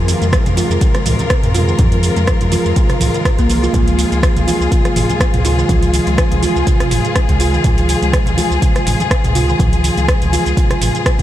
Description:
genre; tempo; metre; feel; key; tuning
afro house; 123 BPM; 4/4; swing 55% on 16ths; unclear; A4 = 441 Hz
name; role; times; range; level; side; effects
clear studio string section; sustained chords; 0.0-11.2 s; C3 to Bb4; -20 LUFS; left 3 dB; sidechain pumping
warm sub bass; bass; 0.0-11.2 s; Ab1 to F2; -18 LUFS; equal; sidechain pumping
afro-pop drum kit; drums; 0.1-11.2 s; hi-hat, rim click, shaker, toms; -21 LUFS; right 1 dB; none
congas; percussion; 0.1-11.2 s; none; -24 LUFS; right 2 dB; none
kalimba; arpeggios; 0.2-11.2 s; C3 to F4; -19 LUFS; right 1 dB; vintage 12-bit sampler grit, sidechain pumping, diffuse ambient delay
electronic kick drum; drums; 0.3-11.2 s; none; -15 LUFS; equal; none
room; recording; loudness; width
light reverb, small room reverb; none; -12 LUFS; side -13 dB against mid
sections
0.0-11.2 A section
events
none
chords
0.0 Fm; 3.7 Db

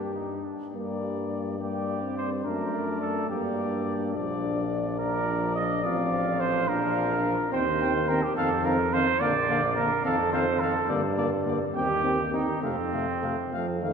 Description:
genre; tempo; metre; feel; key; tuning
classical, brass quintet; 71 BPM (dotted quarters); 6/8; straight; G minor; A4 = 440 Hz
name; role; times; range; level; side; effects
warm cornet; melody; 0.0-13.9 s; G4 to G5; -34 LUFS; left 6 dB; none
mellow trumpet; second line; 0.0-13.9 s; C4 to Eb5; -28 LUFS; right 4 dB; none
mellow French horn; accompaniment; 0.0-13.9 s; A3 to D4; -32 LUFS; left 2 dB; none
warm trombone; accompaniment; 0.0-13.9 s; C3 to Bb3; -34 LUFS; right 1 dB; none
clear tuba; bass; 0.0-13.9 s; A1 to G2; -31 LUFS; equal; none
room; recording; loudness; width
wet cathedral reverb, RT60 4.4 s; minimal, uncompressed stereo recording, lossy compression artefacts; -24 LUFS; side -6 dB against mid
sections
0.7-13.9 A section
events
none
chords
0.0 Gm; 2.5 D/F#; 3.3 Gm; 4.2 Bb; 5.8 F/A; 6.7 Bb; 7.5 Cm/Eb; 8.4 F5; 9.2 Bb; 10.1 F5; 10.9 Gm; 11.8 Cm/Eb; 12.6 F

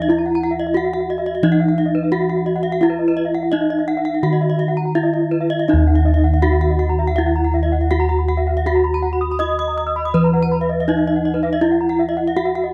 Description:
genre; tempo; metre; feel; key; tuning
Balinese gamelan; 81-91 BPM; 4/4; straight; Eb pelog; A4 = 439 Hz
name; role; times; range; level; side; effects
gamelan-type bronze metallophone; melody; 0.0-12.7 s; Eb4 to Eb5; -22 LUFS; equal; tape echo
gamelan-type bronze metallophone; arpeggios; 0.0-12.6 s; Cb5 to Eb6; -28 LUFS; equal; none
gamelan-type bossed gongs; bass; 0.0-12.4 s; Eb2 to Gb4; -21 LUFS; equal; none
gamelan-type bronze metallophone; arpeggios; 0.3-12.7 s; Cb5 to Fb6+35c; -29 LUFS; equal; none
room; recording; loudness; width
little or no reverb; dry, close 1970s-style studio recording; -18 LUFS; mono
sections
0.0-5.7 A section; 5.7-12.7 B section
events
none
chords
none

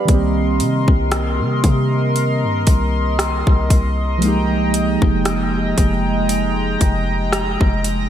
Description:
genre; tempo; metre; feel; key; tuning
contemporary R&B; 58 BPM; 4/4; swing 54% on 16ths; F minor; A4 = 443 Hz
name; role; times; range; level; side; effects
muted felt-like synth keys; accompaniment; 0.0-8.1 s; Eb3 to F5; -21 LUFS; right 2 dB; chorus
chorused pulse-width pad; sustained chords; 0.0-8.1 s; Ab3 to C6; -22 LUFS; equal; none
warm 808-style bass; bass; 0.1-8.1 s; F1 to C3; -20 LUFS; left 1 dB; none
trap drum kit; drums; 0.1-8.1 s; hi-hat, kick drum, rim click; -18 LUFS; left 1 dB; gated reverb
room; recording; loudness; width
moderate lush hall reverb, RT60 2.9 s; bright 1980s-style digital production; -15 LUFS; side -10 dB against mid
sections
0.0-8.1 A section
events
none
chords
0.1 Cm7; 4.2 Fm11

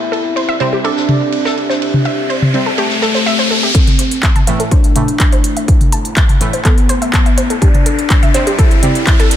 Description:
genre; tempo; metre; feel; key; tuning
melodic techno; 124 BPM; 4/4; straight; A minor; A4 = 441 Hz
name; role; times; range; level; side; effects
resonant sweep polysynth; melody; 0.0-9.4 s; A3 to E4; -19 LUFS; left 1 dB; chorus, sidechain pumping, ping-pong delay
dark analog pad; sustained chords; 0.0-9.4 s; A3 to E5; -25 LUFS; left 2 dB; chorus, sidechain pumping
riser; sound effects; 1.7-9.4 s; none; -21 LUFS; equal; none
wide unison pluck; arpeggios; 0.1-9.3 s; G4 to A5; -20 LUFS; equal; sidechain pumping, ping-pong delay
big rock drum kit; drums; 0.1-3.5 s; ride cymbal, snare drum; -25 LUFS; right 1 dB; high-pass filter on cymbals, low-pass filter on cymbals, small room ambience, high-pass filter on hats, low-pass filter on hats, high-pass filter on snare, low-pass filter on snare, high-pass filter on room, low-pass filter on room
synth brass stab; stabs; 0.6-8.9 s; A2 to C4; -21 LUFS; right 2 dB; chorus, phaser, sidechain pumping, ping-pong delay
techno drum kit; drums; 1.1-9.4 s; handclaps, hi-hat, toms; -17 LUFS; equal; sidechain pumping on toms, small room ambience, sidechain pumping on hats
electronic kick drum; drums; 3.7-9.2 s; none; -11 LUFS; equal; small room ambience
round analog bass; bass; 4.0-9.4 s; none; barely audible; none; none
room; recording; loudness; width
light reverb; none; -10 LUFS; side -11 dB against mid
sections
0.0-3.7 A section; 3.7-9.4 B section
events
filter sweep on analog polysynth 0.0-3.7, 3.7-9.4; riser 1.7-3.7, 3.7-9.4; build-up 3.7-9.4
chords
0.0 C6; 3.7 Am; 7.6 C6

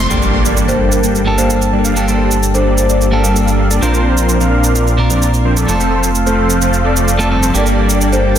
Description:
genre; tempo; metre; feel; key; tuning
EDM, festival progressive house; 129 BPM; 4/4; straight; G minor; A4 = 440 Hz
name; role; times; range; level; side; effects
lush unison pad; sustained chords; 0.0-8.4 s; Bb3 to C6; -23 LUFS; equal; chorus, phaser
supersaw chords; riff; 0.0-8.4 s; F3 to G5; -16 LUFS; equal; low-pass filter, digital delay
fat analog bass; bass; 0.0-8.4 s; F1 to Bb1; -16 LUFS; equal; tube saturation
clean electric guitar; accompaniment; 0.1-8.4 s; G2 to Bb4; -17 LUFS; right 1 dB; digital delay
shaker; drums; 0.1-8.4 s; none; -22 LUFS; right 3 dB; none
impact; sound effects; 0.1-2.0 s; none; -20 LUFS; equal; none
marimba with soft mallets; melody; 0.7-3.0, 8.1-8.4 s; Bb4 to C5; -20 LUFS; left 1 dB; digital delay
room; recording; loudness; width
light reverb; dense, heavily limited modern master; -11 LUFS; side -10 dB against mid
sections
0.1-8.4 A section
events
impact 0.1-2.0; filter sweep on analog synth pad 0.1-8.4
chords
0.1 Gmadd9; 3.8 Bbadd9; 5.7 F; 7.5 Gmadd9

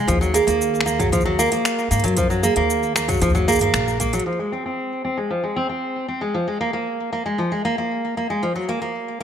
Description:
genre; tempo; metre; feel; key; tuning
folktronica; 115 BPM; 4/4; straight; unclear; A4 = 439 Hz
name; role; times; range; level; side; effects
fingerpicked steel-string acoustic guitar; arpeggios; 0.0-9.2 s; F3 to C4; -21 LUFS; equal; low-pass filter, ping-pong delay
upright bass; bass; 0.1-4.2 s; Bb1 to Ab2; -24 LUFS; left 2 dB; none
electronic kick drum; drums; 0.1-4.1 s; none; -25 LUFS; left 2 dB; none
organic electronic drum kit; drums; 0.1-4.4 s; finger snaps, hi-hat, shaker, toms; -25 LUFS; equal; low-pass filter on perc, low-pass filter on hats, low-pass filter on snare, low-pass filter on toms, low-pass filter on room
marimba with soft mallets; second line; 0.3-3.7 s; Ab4 to Bb4; -25 LUFS; right 6 dB; digital delay
room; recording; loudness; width
light reverb; none; -19 LUFS; side -8 dB against mid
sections
0.0-4.3 A section; 4.3-9.2 B section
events
none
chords
0.1 Ebm; 4.3 Fm (rootless); 6.3 Bb5; 8.4 Ebmadd9 (rootless)

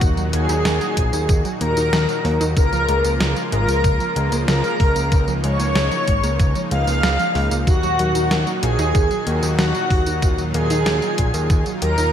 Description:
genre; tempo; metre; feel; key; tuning
synthwave; 94 BPM; 4/4; straight; Eb minor; A4 = 442 Hz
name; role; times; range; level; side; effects
mellow synth brass; melody; 0.0-12.1 s; Gb4 to F5; -23 LUFS; left 1 dB; chorus, tape echo
airy dreamy lead; second line; 0.0-12.1 s; Gb4 to F5; -27 LUFS; equal; chorus, tape echo
soft supersaw; sustained chords; 0.0-12.1 s; Bb2 to Gb4; -26 LUFS; equal; sidechain pumping
analog pluck; arpeggios; 0.0-12.1 s; Db3 to Eb4; -28 LUFS; right 1 dB; chorus, tape echo
fat analog bass; bass; 0.0-12.1 s; Ab1 to Eb2; -21 LUFS; equal; tube saturation
detuned 8-bit digital drum machine; drums; 0.0-12.1 s; hi-hat, snare drum, tambourine; -25 LUFS; equal; gated reverb
electronic kick drum; drums; 0.0-11.6 s; none; -18 LUFS; equal; none
room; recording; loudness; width
light reverb, digital ambience; none; -16 LUFS; side -9 dB against mid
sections
0.0-12.1 A section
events
none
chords
0.0 Ebm; 2.6 Bbm7; 7.7 Ebm

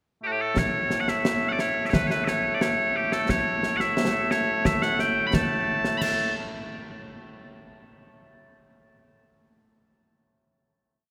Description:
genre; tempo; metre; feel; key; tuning
scottish traditional, Scottish pipe music; 88 BPM; 2/4; straight; A mixolydian; A4 = 440 Hz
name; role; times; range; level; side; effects
loud bright bagpipes; melody; 0.2-6.3 s; A2 to B5; -27 LUFS; equal; none
concert snare drum, concert bass drum and clash cymbals; drums; 0.6-6.2 s; none; -30 LUFS; equal; none
room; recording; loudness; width
wet cathedral reverb, RT60 5.6 s; recorded in a church or concert hall; -25 LUFS; mono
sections
0.0-0.6 pickup bar; 0.6-6.0 A section; 6.0-7.4 final note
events
none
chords
none

